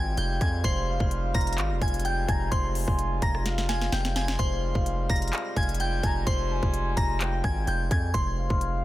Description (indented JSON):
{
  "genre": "hip hop, trap",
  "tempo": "128 BPM",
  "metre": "4/4",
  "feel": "half-time",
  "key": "F minor",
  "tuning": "A4 = 440 Hz",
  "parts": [
    { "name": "glassy synth bell", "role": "melody", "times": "0.0-8.8 s", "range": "C5 to Bb6", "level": "-31 LUFS", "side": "equal", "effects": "chorus, phaser, digital delay" },
    { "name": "gliding portamento lead", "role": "second line", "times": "0.0-8.8 s", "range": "F5 to Bb5", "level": "-37 LUFS", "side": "left 2 dB", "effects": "chorus, digital delay" },
    { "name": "warm French horn section", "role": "sustained chords", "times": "0.0-8.8 s", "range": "C3 to F4", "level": "-36 LUFS", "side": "equal", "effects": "none" },
    { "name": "distorted 808-style bass", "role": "bass", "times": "0.0-8.8 s", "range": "F1 to F2", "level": "-28 LUFS", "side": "equal", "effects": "distortion" },
    { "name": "downlifter", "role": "sound effects", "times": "0.0-0.6 s", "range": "none", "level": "barely audible", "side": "none", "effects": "none" },
    { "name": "trap drum kit", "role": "drums", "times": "0.2-8.7 s", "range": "handclaps, hi-hat, kick drum, rim click, snare drum", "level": "-28 LUFS", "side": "equal", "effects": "none" }
  ],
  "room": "little or no reverb",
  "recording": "dense, heavily limited modern master",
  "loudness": "-24 LUFS",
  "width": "side -15 dB against mid",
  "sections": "0.0-8.8 A section",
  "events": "drum fill 3.5-4.4",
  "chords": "0.0 Fmadd9"
}